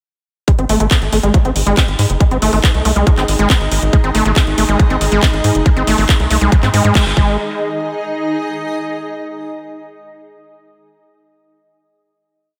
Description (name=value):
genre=psychedelic trance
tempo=139 BPM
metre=4/4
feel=straight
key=G# major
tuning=A4 = 440 Hz
part: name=overdriven acid bass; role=riff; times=0.5-7.4 s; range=F#3 to B#3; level=-20 LUFS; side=equal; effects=distortion, vintage 12-bit sampler grit, sidechain pumping, analog delay
part: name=electronic kick drum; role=drums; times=0.5-7.3 s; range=none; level=-14 LUFS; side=equal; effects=none
part: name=garage drum kit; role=drums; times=0.5-7.1 s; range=handclaps, hi-hat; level=-22 LUFS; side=equal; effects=none
part: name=granular cloud pad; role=texture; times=1.6-9.1 s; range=D#4 to D#5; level=-24 LUFS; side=equal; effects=built-in reverb, sidechain pumping
part: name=tight sequencer bass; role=bass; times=0.6-7.4 s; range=F#1 to G#2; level=-18 LUFS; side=equal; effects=none
room=moderate lush hall reverb, RT60 2.0 s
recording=dreamy mix soaked in reverb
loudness=-14 LUFS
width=mono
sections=0.5-7.4 groove; 7.4-9.1 final note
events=filter sweep on acid bass 0.5-7.4; band accent 7.0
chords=0.5 G#5